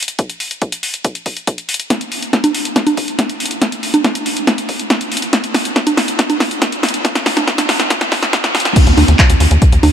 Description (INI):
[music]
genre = uplifting trance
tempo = 140 BPM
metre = 4/4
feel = straight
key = unclear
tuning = A4 = 437 Hz
[part]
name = punchy analog drum machine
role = drums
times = 0.0-9.9 s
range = congas, crash cymbal, handclaps, hi-hat, snare drum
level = -14 LUFS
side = equal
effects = none
[part]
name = electronic kick drum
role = drums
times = 0.2-9.7 s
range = none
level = -14 LUFS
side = equal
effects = high-pass filter on kick
[part]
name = tight sequencer bass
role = bass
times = 8.9-9.9 s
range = Eb2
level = -11 LUFS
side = equal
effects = sidechain pumping
[sound]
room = moderate huge ambient reverb, RT60 4.4 s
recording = high-pass filter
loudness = -13 LUFS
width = side -9 dB against mid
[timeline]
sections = 0.0-8.8 A section; 8.8-9.9 B section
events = build-up 0.0-8.8; drum fill 1.9-8.8; drop 8.8-9.9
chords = none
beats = | 0.19 0.62 1.05 1.48 | 1.90 2.33 2.76 3.19 | 3.62 4.05 4.47 4.90 | 5.33 5.76 6.19 6.62 | 7.05 7.47 7.90 8.33 | 8.76 9.19 9.62